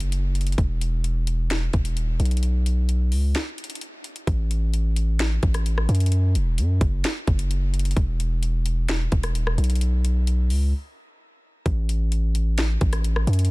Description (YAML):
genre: hip hop, atmospheric cloud-rap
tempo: 130 BPM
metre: 4/4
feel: half-time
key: unclear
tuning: A4 = 440 Hz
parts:
  - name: long sustained 808-style bass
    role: bass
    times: 0.0-13.5 s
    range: D#1 to F#2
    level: -21 LUFS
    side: equal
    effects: none
  - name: trap drum kit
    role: drums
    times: 0.0-13.5 s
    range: hi-hat, kick drum, rim click, snare drum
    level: -27 LUFS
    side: equal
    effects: none
room: little or no reverb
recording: dense, heavily limited modern master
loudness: -20 LUFS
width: side -23 dB against mid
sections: 0.0-4.3 A section; 4.3-13.5 B section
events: break 3.3-4.3, 10.7-11.7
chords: none